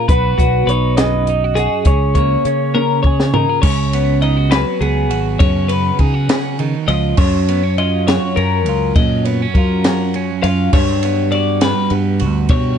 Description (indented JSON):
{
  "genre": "math rock and midwest emo",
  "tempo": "68 BPM (dotted quarters)",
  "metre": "6/8",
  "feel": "straight",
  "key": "unclear",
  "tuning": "A4 = 440 Hz",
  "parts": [
    { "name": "twelve-string electric guitar", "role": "accompaniment", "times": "0.0-12.8 s", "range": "F#2 to G#4", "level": "-20 LUFS", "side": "right 9 dB", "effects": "none" },
    { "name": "twelve-string electric guitar", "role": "arpeggios", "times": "0.0-12.8 s", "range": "F#4 to E#5", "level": "-19 LUFS", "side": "left 7 dB", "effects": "none" },
    { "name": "electric guitar through a small old amp", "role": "melody", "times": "0.1-3.0 s", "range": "B4 to D#5", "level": "-20 LUFS", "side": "right 2 dB", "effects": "none" },
    { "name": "fingered electric bass", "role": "bass", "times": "0.1-12.8 s", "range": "G#1 to F#3", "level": "-17 LUFS", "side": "equal", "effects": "none" },
    { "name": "compact cocktail drum kit", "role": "drums", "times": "0.1-12.6 s", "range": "crash cymbal, hi-hat, kick drum, ride cymbal, snare drum, toms", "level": "-17 LUFS", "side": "equal", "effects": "vintage 12-bit sampler grit" }
  ],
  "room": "light reverb",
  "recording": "nothing above 10.9 kHz",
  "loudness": "-13 LUFS",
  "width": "side -8 dB against mid",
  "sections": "0.0-3.6 A section; 3.6-12.8 B section",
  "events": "drum fill 2.7-3.6",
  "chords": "0.1 B; 1.9 A#m7/C#; 3.6 C#7sus4; 7.2 F#maj7; 10.7 Gmaj7"
}